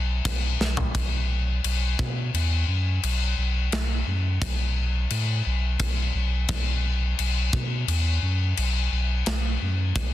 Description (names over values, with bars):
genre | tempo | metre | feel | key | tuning
heavy metal | 87 BPM | 4/4 | straight | unclear | A4 = 440 Hz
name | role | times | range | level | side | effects
warm sub bass | bass | 0.0-10.1 s | B1 to B2 | -24 LUFS | equal | none
tight metal drum kit | drums | 0.3-10.1 s | crash cymbal, kick drum, snare drum, toms | -27 LUFS | left 3 dB | soft clipping on kick
room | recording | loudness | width
little or no reverb | dense, heavily limited modern master | -22 LUFS | side -13 dB against mid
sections
0.0-10.1 A section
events
half time 0.0-10.1; drum fill 0.6-0.9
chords
none